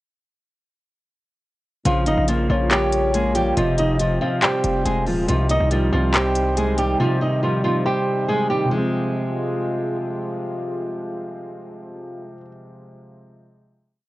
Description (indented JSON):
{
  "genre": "hip hop, trap",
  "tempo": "140 BPM",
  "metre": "4/4",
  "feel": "half-time",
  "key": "F minor",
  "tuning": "A4 = 441 Hz",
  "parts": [
    { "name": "flamenco guitar", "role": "melody", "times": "1.9-10.0 s", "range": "F3 to Eb5", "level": "-22 LUFS", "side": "right 1 dB", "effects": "low-pass filter, tape echo" },
    { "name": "gliding portamento lead", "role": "second line", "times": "1.9-4.8 s", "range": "Db5 to F5", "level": "-27 LUFS", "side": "left 2 dB", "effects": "chorus, tape echo" },
    { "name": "dark grand piano", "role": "accompaniment", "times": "1.9-14.1 s", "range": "C3 to Db5", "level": "-24 LUFS", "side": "equal", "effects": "low-pass filter" },
    { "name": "dark French horn section", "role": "sustained chords", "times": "1.9-12.4 s", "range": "C3 to F4", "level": "-30 LUFS", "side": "left 1 dB", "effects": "none" },
    { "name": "hard-hitting 808-style bass", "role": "bass", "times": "1.9-7.0 s", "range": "Eb1 to C2", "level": "-23 LUFS", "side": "equal", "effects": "none" },
    { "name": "trap drum kit", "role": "drums", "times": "1.9-6.9 s", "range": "handclaps, hi-hat", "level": "-23 LUFS", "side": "equal", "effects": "vintage 12-bit sampler grit" }
  ],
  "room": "studio reverb",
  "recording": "worn, warbling old tape, cassette tape, warbly pitch drift",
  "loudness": "-18 LUFS",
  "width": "side -17 dB against mid",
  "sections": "1.9-8.7 hook; 8.7-12.1 final chord",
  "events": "none",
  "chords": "1.9 Bbm; 3.6 Fm; 5.3 Cm; 8.7 Fm"
}